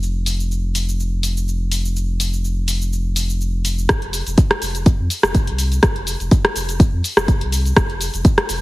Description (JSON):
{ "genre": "afro house", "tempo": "124 BPM", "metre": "4/4", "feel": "swing 54% on 16ths", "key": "unclear", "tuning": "A4 = 440 Hz", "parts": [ { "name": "warm sub bass", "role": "bass", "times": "0.0-8.6 s", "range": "F1 to F2", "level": "-21 LUFS", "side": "equal", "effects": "sidechain pumping" }, { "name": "house drum kit", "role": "drums", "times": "0.0-8.6 s", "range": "hi-hat, rim click, shaker", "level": "-20 LUFS", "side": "equal", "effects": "none" }, { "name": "electronic kick drum", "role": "drums", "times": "3.9-8.4 s", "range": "none", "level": "-14 LUFS", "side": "equal", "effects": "none" } ], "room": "little or no reverb", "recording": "heavily compressed radio sound", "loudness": "-16 LUFS", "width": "side -19 dB against mid", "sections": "0.0-3.9 A section; 3.9-8.6 B section", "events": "filter sweep on drum 0.0-3.9; build-up 3.9-8.6", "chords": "none" }